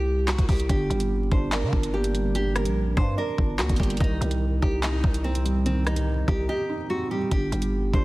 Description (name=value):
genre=hip hop, drill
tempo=145 BPM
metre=4/4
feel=half-time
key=G minor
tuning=A4 = 440 Hz
part: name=nylon-string guitar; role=melody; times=0.0-8.0 s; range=C4 to C5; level=-29 LUFS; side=right 1 dB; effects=none
part: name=growling 808-style bass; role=bass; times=0.0-8.0 s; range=G1 to D3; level=-25 LUFS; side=equal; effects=none
part: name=drill drum kit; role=drums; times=0.3-8.0 s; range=handclaps, hi-hat, kick drum, rim click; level=-25 LUFS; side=equal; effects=none
part: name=felt-muted upright piano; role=accompaniment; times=0.7-8.0 s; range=D3 to Eb5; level=-30 LUFS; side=right 2 dB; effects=none
room=studio reverb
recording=dense, heavily limited modern master, vinyl crackle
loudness=-22 LUFS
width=side -19 dB against mid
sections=0.0-8.0 A section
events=break 6.5-7.3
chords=0.0 C5; 0.7 Gm; 4.0 Cm; 7.3 G5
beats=0.28 | 0.69 1.11 1.52 1.94 | 2.35 2.76 3.18 3.59 | 4.00 4.42 4.83 5.25 | 5.66 6.07 6.49 6.90 | 7.32 7.73